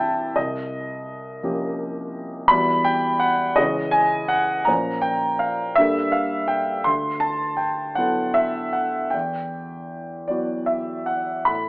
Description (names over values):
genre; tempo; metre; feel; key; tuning
classical, impressionist solo piano; 50-59 BPM (dotted quarters); 6/8; rubato; unclear; A4 = 442 Hz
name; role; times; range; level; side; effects
warm grand piano; solo; 0.0-11.7 s; C2 to C6; -20 LUFS; equal; none
room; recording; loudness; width
moderate recital hall reverb, RT60 1.4 s; AM radio sound; -19 LUFS; side -25 dB against mid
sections
0.0-11.7 A section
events
none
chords
0.4 Eb9/C; 2.5 Emadd9; 3.6 C#m; 4.7 Bbmadd9; 5.8 Gmadd9; 6.9 D69; 9.1 Emadd9